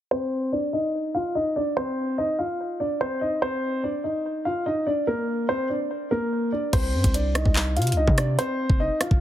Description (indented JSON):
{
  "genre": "hip hop, drill",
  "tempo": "145 BPM",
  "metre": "4/4",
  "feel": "half-time",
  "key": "unclear",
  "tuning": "A4 = 440 Hz",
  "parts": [
    { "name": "dark concert grand piano", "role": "melody", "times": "0.1-9.2 s", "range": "Bb3 to F5", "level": "-24 LUFS", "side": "equal", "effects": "low-pass filter" },
    { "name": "hard-hitting 808-style bass", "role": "bass", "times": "6.7-9.2 s", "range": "F1 to C3", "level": "-23 LUFS", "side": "equal", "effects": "none" },
    { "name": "drill drum kit", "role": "drums", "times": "6.7-9.2 s", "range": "crash cymbal, handclaps, hi-hat, kick drum, rim click", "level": "-23 LUFS", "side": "equal", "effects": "none" }
  ],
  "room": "light reverb",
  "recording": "heavily compressed radio sound",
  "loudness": "-22 LUFS",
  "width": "side -12 dB against mid",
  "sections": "0.1-6.7 A section; 6.7-9.2 B section",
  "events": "filter sweep on grand piano 0.1-6.7",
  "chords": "0.1 F5; 5.1 Bbadd9; 6.7 Cm; 8.4 F5",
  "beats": "| 0.11 0.52 0.94 1.35 | 1.76 2.18 2.59 3.01 | 3.42 3.83 4.25 4.66 | 5.08 5.49 5.90 6.32 | 6.73 7.14 7.56 7.97 | 8.39 8.80"
}